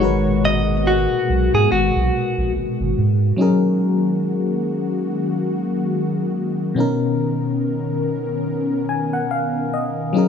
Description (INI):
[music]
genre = R&B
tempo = 71 BPM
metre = 4/4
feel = swing 58% on 16ths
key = F# major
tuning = A4 = 440 Hz
[part]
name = direct-recorded clean electric guitar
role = melody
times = 0.0-2.5 s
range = F#4 to D#5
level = -20 LUFS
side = equal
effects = tape echo
[part]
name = FM electric piano with auto-pan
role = accompaniment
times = 0.0-10.3 s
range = B2 to G#5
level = -21 LUFS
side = left 3 dB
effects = none
[part]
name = warm analog pad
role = sustained chords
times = 0.0-10.3 s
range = A#2 to A#4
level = -24 LUFS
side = equal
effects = chorus
[part]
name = warm sub bass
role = bass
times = 0.0-3.3 s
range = G#1 to G#2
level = -20 LUFS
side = right 1 dB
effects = none
[sound]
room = light reverb, digital ambience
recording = studio ambience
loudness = -17 LUFS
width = side -7 dB against mid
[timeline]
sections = 0.0-3.4 A section; 3.4-10.3 B section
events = FM electric piano fill 8.5-10.2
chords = 0.0 G#m9; 3.4 F#69; 6.8 Bmaj9